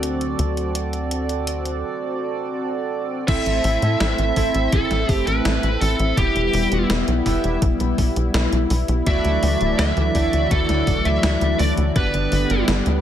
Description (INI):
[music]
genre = synthwave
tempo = 83 BPM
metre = 4/4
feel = straight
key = unclear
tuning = A4 = 440 Hz
[part]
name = warm analog pad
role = sustained chords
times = 0.0-13.0 s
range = D3 to F#4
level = -25 LUFS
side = left 1 dB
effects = chorus, sidechain pumping
[part]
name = chorused polysynth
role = stabs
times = 0.0-13.0 s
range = A3 to E5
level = -26 LUFS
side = right 3 dB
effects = cassette tape, ping-pong delay
[part]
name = tight sequencer bass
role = bass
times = 0.0-13.0 s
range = D1 to A2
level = -22 LUFS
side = equal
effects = sidechain pumping
[part]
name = gated 80s digital drum machine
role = drums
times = 0.0-13.0 s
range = crash cymbal, hi-hat, snare drum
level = -27 LUFS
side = equal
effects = gated reverb, gated reverb snare
[part]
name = high-gain lead guitar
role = melody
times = 3.3-12.6 s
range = G4 to E5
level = -23 LUFS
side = right 1 dB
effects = distortion, vintage 12-bit sampler grit, ping-pong delay
[part]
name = electronic kick drum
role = drums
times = 3.3-12.1 s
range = none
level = -22 LUFS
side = equal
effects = overdrive
[sound]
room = little or no reverb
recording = none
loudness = -18 LUFS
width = side -10 dB against mid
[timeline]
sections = 0.0-3.3 A section; 3.3-13.0 B section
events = break 1.8-3.3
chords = 0.0 D7; 3.3 Am; 6.2 Em; 9.1 Dadd9; 12.0 G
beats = | 0.39 1.11 1.84 2.56 | 3.28 4.01 4.73 5.45 | 6.17 6.90 7.62 8.34 | 9.07 9.79 10.51 11.24 | 11.96 12.68